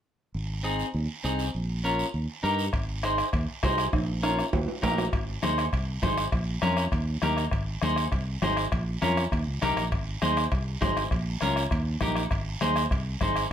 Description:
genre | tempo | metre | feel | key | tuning
latin, cumbia | 200 BPM | 4/4 | straight | Ab major | A4 = 439 Hz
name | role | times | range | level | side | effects
fingered electric bass | bass | 0.3-13.5 s | Ab1 to G2 | -30 LUFS | right 1 dB | none
guiro | percussion | 0.3-13.5 s | none | -39 LUFS | right 6 dB | none
clean electric guitar | accompaniment | 0.6-13.4 s | C4 to C5 | -28 LUFS | equal | none
bombo | percussion | 2.7-13.5 s | none | -31 LUFS | left 1 dB | none
timbales | percussion | 2.7-13.5 s | none | -36 LUFS | right 4 dB | none
congas | percussion | 5.1-13.4 s | none | -35 LUFS | left 5 dB | none
room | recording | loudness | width
moderate studio reverb, RT60 0.7 s | none | -25 LUFS | side -9 dB against mid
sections
0.3-5.1 A section; 5.1-13.5 B section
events
drum fill 3.9-5.1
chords
0.3 Ab; 1.5 Bbm; 2.1 Eb; 2.7 Ab; 3.9 Bbm; 4.5 Eb; 5.1 Ab; 6.3 Bbm; 6.9 Eb; 7.5 Ab; 8.7 Bbm; 9.3 Eb; 9.9 Ab; 11.1 Bbm; 11.7 Eb; 12.3 Ab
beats
| 0.34 0.64 0.94 1.24 | 1.54 1.84 2.14 2.44 | 2.74 3.04 3.34 3.64 | 3.94 4.24 4.53 4.83 | 5.13 5.43 5.73 6.03 | 6.33 6.63 6.93 7.23 | 7.53 7.83 8.13 8.43 | 8.72 9.02 9.32 9.62 | 9.92 10.22 10.52 10.82 | 11.12 11.42 11.72 12.02 | 12.32 12.62 12.92 13.22

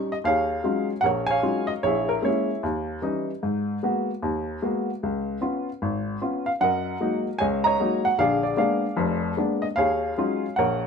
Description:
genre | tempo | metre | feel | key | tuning
solo jazz | 151 BPM | 4/4 | swing 65% on 8ths | Eb minor | A4 = 440 Hz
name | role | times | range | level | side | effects
warm baby grand piano | solo | 0.0-10.9 s | F1 to Bb5 | -22 LUFS | equal | none
room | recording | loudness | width
moderate stone room reverb, RT60 1.2 s | band playing live in one room | -22 LUFS | side -6 dB against mid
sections
0.2-10.9 A section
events
none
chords
0.2 Ebm11; 1.8 Bbm7b5; 2.6 Eb7b9; 3.4 Abm9; 5.0 Db7; 6.6 Gb69; 8.2 Bb7b9; 9.8 Ebm11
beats
| 0.24 0.64 1.04 1.44 | 1.83 2.23 2.63 3.03 | 3.43 3.82 4.22 4.62 | 5.02 5.41 5.81 6.21 | 6.60 7.00 7.40 7.79 | 8.19 8.59 8.99 9.38 | 9.78 10.18 10.57

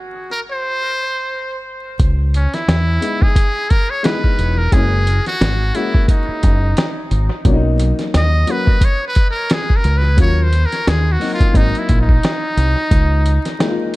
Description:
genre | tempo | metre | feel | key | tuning
hip hop, jazz-hop | 88 BPM | 4/4 | swing 58% on 16ths | C# dorian | A4 = 441 Hz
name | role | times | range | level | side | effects
trumpet with metal mute | melody | 0.3-13.7 s | C#4 to D#5 | -21 LUFS | equal | analog delay
deep dub fingered electric bass | bass | 2.0-13.4 s | E1 to E2 | -15 LUFS | equal | none
lo-fi sampler-style drum kit | drums | 2.0-14.0 s | hi-hat, kick drum, snare drum | -16 LUFS | equal | none
dark upright piano | accompaniment | 3.0-14.0 s | F#3 to F#4 | -22 LUFS | left 3 dB | none
room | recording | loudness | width
digital ambience | echo-heavy mix, vinyl crackle, faint mains hum | -13 LUFS | side -19 dB against mid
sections
0.0-2.0 A section; 2.0-14.0 B section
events
stop 0.0-2.0; muted trumpet solo 2.0-14.0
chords
0.0 N.C.; 2.0 C#m7; 4.7 F#; 7.5 Bmaj7; 10.2 D#m7; 11.6 G#7; 12.9 C#69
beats
0.64 1.32 | 2.00 2.69 3.37 4.05 | 4.73 5.41 6.10 6.78 | 7.46 8.14 8.82 9.51 | 10.19 10.87 11.55 12.23 | 12.91 13.60

